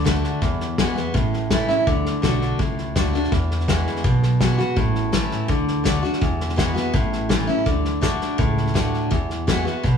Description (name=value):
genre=honky-tonk and classic country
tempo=166 BPM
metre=4/4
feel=straight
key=unclear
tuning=A4 = 439 Hz
part: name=picked steel-string acoustic guitar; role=accompaniment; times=0.0-10.0 s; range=E2 to F#4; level=-22 LUFS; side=left 2 dB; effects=none
part: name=upright bass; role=bass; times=0.0-10.0 s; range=A1 to E2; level=-24 LUFS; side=right 1 dB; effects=none
part: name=unplugged drum kit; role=drums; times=0.1-9.9 s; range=hi-hat, kick drum, snare drum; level=-23 LUFS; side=equal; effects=none
room=moderate recital hall reverb, RT60 1.8 s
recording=none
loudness=-18 LUFS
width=side -7 dB against mid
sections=0.0-10.0 A section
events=none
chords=0.4 Eadd9; 1.1 A; 1.9 D; 3.3 Eadd9; 4.8 A; 5.5 D; 6.2 Eadd9; 6.9 A; 7.7 D; 9.1 Eadd9